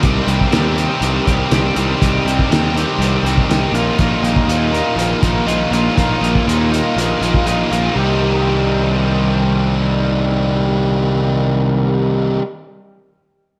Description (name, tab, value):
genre	indie rock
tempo	121 BPM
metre	4/4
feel	straight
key	C minor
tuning	A4 = 442 Hz
part	cranked stack guitar	riff	0.0-12.4 s	Bb2 to G4	-22 LUFS	equal	overdrive, analog chorus, diffuse ambient delay
part	fuzz guitar	riff	0.0-12.4 s	Bb2 to G4	-20 LUFS	equal	distortion
part	fuzz picked electric bass	bass	0.0-12.4 s	Bb1 to Eb2	-21 LUFS	equal	overdrive
part	cloth-damped thuddy drum kit	drums	0.0-7.8 s	hi-hat, kick drum, snare drum	-22 LUFS	equal	none
room	moderate plate reverb, RT60 1.4 s, studio reverb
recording	dreamy mix soaked in reverb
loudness	-16 LUFS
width	mono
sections	0.0-8.0 A section; 8.0-12.0 B section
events	none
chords	0.0 Cm; 3.7 Bbsus4; 8.0 Cm